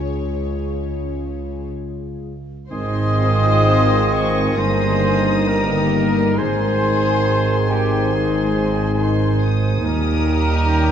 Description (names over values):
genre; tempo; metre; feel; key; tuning
classical, slow romantic movement for symphony orchestra; 56-71 BPM; 4/4; rubato; Ab major; A4 = 442 Hz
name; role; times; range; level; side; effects
rich studio violin section; melody; 0.0-10.9 s; Db5 to Eb6; -31 LUFS; left 4 dB; none
rich studio violin section; second line; 0.0-10.9 s; Db4 to C5; -29 LUFS; left 5 dB; none
dark studio viola section; accompaniment; 0.0-10.9 s; Ab3 to C5; -29 LUFS; equal; none
dark French horn section; sustained chords; 0.0-10.9 s; G3 to F4; -26 LUFS; left 6 dB; none
dark studio double bass section; bass; 0.0-10.9 s; G1 to Eb2; -23 LUFS; right 3 dB; none
warm studio cello section; bass; 0.0-10.9 s; Eb2 to Db3; -25 LUFS; right 2 dB; none
clear oboe; second line; 2.7-10.9 s; G5 to Bb5; -30 LUFS; right 2 dB; none
dark clarinet; second line; 2.7-10.9 s; C4 to Eb4; -29 LUFS; left 8 dB; none
mellow hollow silver concert flute; second line; 2.7-10.9 s; G5 to Eb6; -29 LUFS; left 3 dB; none
mellow bassoon; accompaniment; 2.7-10.9 s; Eb3; -27 LUFS; equal; none
clear trombone section; sustained chords; 2.7-10.9 s; G2 to Eb3; -30 LUFS; right 1 dB; none
mellow trumpet section; stabs; 2.7-10.9 s; G4 to Eb5; -23 LUFS; right 1 dB; none
mellow tuba; bass; 2.7-10.9 s; G1 to Eb2; -26 LUFS; right 3 dB; none
room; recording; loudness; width
moderate concert hall reverb, RT60 1.9 s; dark, warm production, nothing above 8.0 kHz; -16 LUFS; side -8 dB against mid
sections
0.0-2.7 A section; 2.7-10.9 B section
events
none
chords
0.0 Db; 2.7 Ab; 4.6 Eb/G; 6.4 Ab; 9.8 Eb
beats
0.66 1.69 | 2.72 3.67 4.58 5.48 | 6.38 7.26 8.13 8.98 | 9.83 10.68